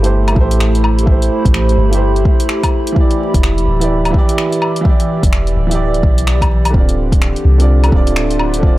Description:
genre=future garage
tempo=127 BPM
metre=4/4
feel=swing 61% on 16ths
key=A minor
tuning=A4 = 440 Hz
part: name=warm upright piano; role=accompaniment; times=0.0-8.8 s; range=D3 to D5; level=-19 LUFS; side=right 3 dB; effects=sidechain pumping, tape echo
part: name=warbly tape-like pad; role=sustained chords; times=0.0-8.8 s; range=D3 to B5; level=-20 LUFS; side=equal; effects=chorus, built-in reverb, vintage 12-bit sampler grit, sidechain pumping
part: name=soft 808-style bass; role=bass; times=0.0-8.8 s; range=D1 to C2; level=-14 LUFS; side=equal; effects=sidechain pumping
part: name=deep house drum kit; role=drums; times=0.0-8.6 s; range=finger snaps, hi-hat, woodblock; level=-21 LUFS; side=left 1 dB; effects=overdrive
part: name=electronic kick drum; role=drums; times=0.4-8.7 s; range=none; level=-13 LUFS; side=equal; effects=overdrive
room=little or no reverb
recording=dry, gritty hardware recording, transformer saturation, vinyl crackle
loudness=-11 LUFS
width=side -17 dB against mid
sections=0.0-8.8 A section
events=none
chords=0.0 Am7; 3.0 Em7; 6.7 Dm7

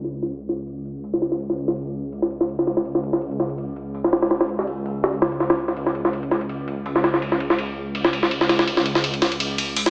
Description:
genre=drum and bass, jungle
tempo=165 BPM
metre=4/4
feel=swing 54% on 16ths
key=unclear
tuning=A4 = 440 Hz
part: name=detuned saw bass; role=bass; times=0.0-9.9 s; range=C#2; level=-31 LUFS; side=equal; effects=none
part: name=jungle sampler-style drum kit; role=drums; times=0.0-9.9 s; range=hi-hat, ride cymbal, snare drum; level=-23 LUFS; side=equal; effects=high-pass filter on kick, high-pass filter on cymbals, high-pass filter on snare, high-pass filter on hats
room=moderate digital room reverb, RT60 1.2 s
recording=heavily compressed radio sound, low-pass filter, small speaker sound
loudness=-23 LUFS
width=mono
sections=0.0-9.9 A section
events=filter sweep 0.0-9.9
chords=none

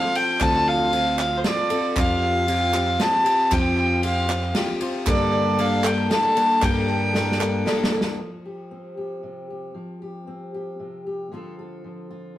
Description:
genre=indie folk with a building arrangement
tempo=116 BPM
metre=3/4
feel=straight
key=unclear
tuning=A4 = 444 Hz
part: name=warm fiddle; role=melody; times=0.0-7.7 s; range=C5 to A5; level=-21 LUFS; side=equal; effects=none
part: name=picked plugged-in twelve-string acoustic guitar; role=accompaniment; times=0.0-8.2 s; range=G2 to A4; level=-25 LUFS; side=left 2 dB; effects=none
part: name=dark upright piano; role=arpeggios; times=0.0-8.2 s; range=Bb3 to C5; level=-31 LUFS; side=right 1 dB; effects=none
part: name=group handclap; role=percussion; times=0.0-8.0 s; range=none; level=-32 LUFS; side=right 2 dB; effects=none
part: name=natural country drum kit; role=drums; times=0.2-8.1 s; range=kick drum, ride cymbal, snare drum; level=-27 LUFS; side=equal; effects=none
part: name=fingered electric bass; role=bass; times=0.4-7.6 s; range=D2 to G2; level=-27 LUFS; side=equal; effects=none
part: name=fingerpicked steel-string acoustic guitar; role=accompaniment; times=8.2-12.4 s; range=C3 to A4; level=-33 LUFS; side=left 1 dB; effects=none
room=wet stone room reverb, RT60 0.9 s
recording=rough rehearsal-room recording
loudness=-19 LUFS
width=side -13 dB against mid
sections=0.0-8.2 A section; 8.2-12.4 B section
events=drum fill 7.1-8.2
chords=0.0 Dm7; 2.0 Fsus2; 5.1 Gmadd9; 8.2 Fsus2; 11.3 Dm7

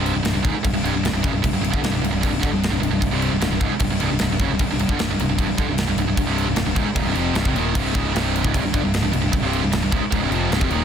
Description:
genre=heavy metal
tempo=152 BPM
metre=4/4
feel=straight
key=C minor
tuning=A4 = 439 Hz
part: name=distorted electric guitar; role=riff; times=0.0-10.8 s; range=C2 to F3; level=-26 LUFS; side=left 11 dB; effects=distortion
part: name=heavy high-gain guitar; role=riff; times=0.0-10.8 s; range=C2 to F3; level=-24 LUFS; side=right 10 dB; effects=distortion
part: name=thick fuzz guitar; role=riff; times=0.0-10.8 s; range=C2 to F3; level=-28 LUFS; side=equal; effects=distortion
part: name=growling picked electric bass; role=bass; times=0.0-10.8 s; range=C1 to G1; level=-25 LUFS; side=equal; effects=overdrive
part: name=tight metal drum kit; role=drums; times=0.1-10.8 s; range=crash cymbal, kick drum, snare drum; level=-24 LUFS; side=equal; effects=none
room=small room ambience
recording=dense, heavily limited modern master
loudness=-18 LUFS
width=side -8 dB against mid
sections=0.0-10.8 A section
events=none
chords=0.0 Cm

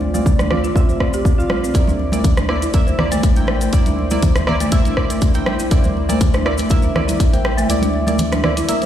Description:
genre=afro house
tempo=121 BPM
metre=4/4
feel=swing 54% on 16ths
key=unclear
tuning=A4 = 440 Hz
part: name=dark analog pad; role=sustained chords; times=0.0-8.9 s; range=A3 to E5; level=-26 LUFS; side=equal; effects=chorus, sidechain pumping
part: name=warm analog keys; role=stabs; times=0.0-8.9 s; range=Bb3 to G5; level=-23 LUFS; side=right 1 dB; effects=chorus, sidechain pumping, ping-pong delay
part: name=warm sub bass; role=bass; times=0.0-8.6 s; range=A1 to D2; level=-22 LUFS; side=equal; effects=tube saturation, sidechain pumping
part: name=congas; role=percussion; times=0.0-8.9 s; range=none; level=-24 LUFS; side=right 2 dB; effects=none
part: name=folk marimba with soft mallets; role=arpeggios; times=0.1-8.9 s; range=A3 to C5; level=-23 LUFS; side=left 2 dB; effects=sidechain pumping, ping-pong delay
part: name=cabasa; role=percussion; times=0.1-8.9 s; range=none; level=-34 LUFS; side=left 4 dB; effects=none
part: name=electronic kick drum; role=drums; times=0.3-7.3 s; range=none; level=-15 LUFS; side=equal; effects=none
part: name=house drum kit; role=drums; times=0.4-8.9 s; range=hi-hat, rim click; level=-25 LUFS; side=equal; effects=none
room=light reverb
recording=played on a big sound system in a bare room, large studio reverb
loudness=-14 LUFS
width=side -10 dB against mid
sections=0.0-8.9 A section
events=kick drops out 7.7-8.9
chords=0.0 Dm7; 1.7 C9

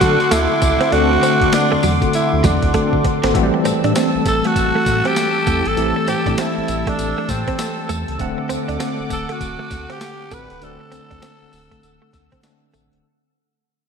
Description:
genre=R&B, new jack swing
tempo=99 BPM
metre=4/4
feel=swing 62% on 16ths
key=unclear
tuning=A4 = 440 Hz
part: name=raspy tenor saxophone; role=melody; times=0.0-12.4 s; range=C4 to B4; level=-21 LUFS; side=right 1 dB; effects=ping-pong delay
part: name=bell-like tine electric piano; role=accompaniment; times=0.0-13.1 s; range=D3 to F#5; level=-22 LUFS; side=left 2 dB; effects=medium stereo tremolo
part: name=warm analog pad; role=sustained chords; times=0.0-13.0 s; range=A4 to E6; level=-24 LUFS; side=equal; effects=chorus
part: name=direct-recorded clean electric guitar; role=riff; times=0.0-12.9 s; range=F#3 to D4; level=-24 LUFS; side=right 3 dB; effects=analog chorus
part: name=mellow synth brass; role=stabs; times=0.0-11.2 s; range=C4 to A4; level=-26 LUFS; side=left 1 dB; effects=chorus
part: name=sub bass with octave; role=bass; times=0.0-13.0 s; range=C#1 to D3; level=-24 LUFS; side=equal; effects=none
part: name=boom bap sampler-style drum kit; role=drums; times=0.0-13.0 s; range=hi-hat, kick drum, snare drum, tambourine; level=-24 LUFS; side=equal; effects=none
room=wet lush hall reverb, RT60 2.2 s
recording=bright 1980s-style digital production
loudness=-15 LUFS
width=side -6 dB against mid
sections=0.0-3.3 A section; 3.3-13.0 B section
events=drum fill 2.7-3.3; fade-out 3.3-13.0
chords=0.0 D7; 3.3 Am7; 8.2 D7

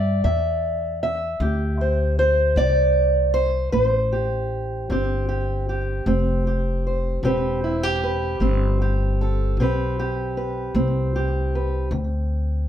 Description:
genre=acoustic country blues, solo or duo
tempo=51 BPM (dotted quarters)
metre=12/8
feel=straight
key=A minor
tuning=A4 = 439 Hz
part: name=fingerpicked steel-string acoustic guitar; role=melody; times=0.0-12.7 s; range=A2 to E5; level=-22 LUFS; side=right 1 dB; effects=slapback echo
part: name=upright bass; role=bass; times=0.0-12.7 s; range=E1 to G2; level=-23 LUFS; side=equal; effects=none
room=little or no reverb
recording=close, detailed microphones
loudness=-20 LUFS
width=side -10 dB against mid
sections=0.0-12.7 A section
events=none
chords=0.0 Am9; 11.9 D7(no3)

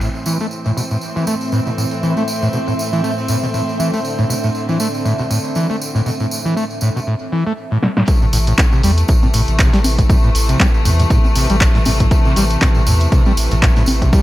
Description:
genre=acid house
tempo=119 BPM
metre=4/4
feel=swing 56% on 16ths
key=A minor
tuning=A4 = 441 Hz
part: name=warm chamber string section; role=sustained chords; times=0.0-14.2 s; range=A2 to C4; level=-23 LUFS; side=equal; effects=sidechain pumping, low-pass filter
part: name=overdriven acid bass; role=riff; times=0.0-14.2 s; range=A2 to A3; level=-19 LUFS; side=equal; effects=distortion, wide subtle chorus, cassette tape, dub echo
part: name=punchy analog drum machine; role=drums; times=0.0-0.1, 7.8-14.2 s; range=congas, crash cymbal, handclaps, hi-hat, snare drum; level=-20 LUFS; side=equal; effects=low-pass filter on hats, low-pass filter on snare, low-pass filter on cymbals, low-pass filter on perc, low-pass filter on room
part: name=tambourine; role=percussion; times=0.0-14.2 s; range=none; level=-28 LUFS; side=right 1 dB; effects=dub echo
part: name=ethereal airy pad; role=texture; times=1.1-7.1 s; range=C4 to E5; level=-25 LUFS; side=right 1 dB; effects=ensemble chorus, built-in reverb, sidechain pumping
part: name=electronic kick drum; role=drums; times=8.1-14.2 s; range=none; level=-14 LUFS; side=equal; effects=none
part: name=warm sub bass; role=bass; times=8.3-14.1 s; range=A1 to E2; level=-16 LUFS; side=equal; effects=tube saturation, sidechain pumping
room=light reverb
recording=echo-heavy mix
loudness=-13 LUFS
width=side -15 dB against mid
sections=0.0-8.1 A section; 8.1-14.2 B section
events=drum fill 7.8; drop 8.1-14.2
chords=0.0 Am

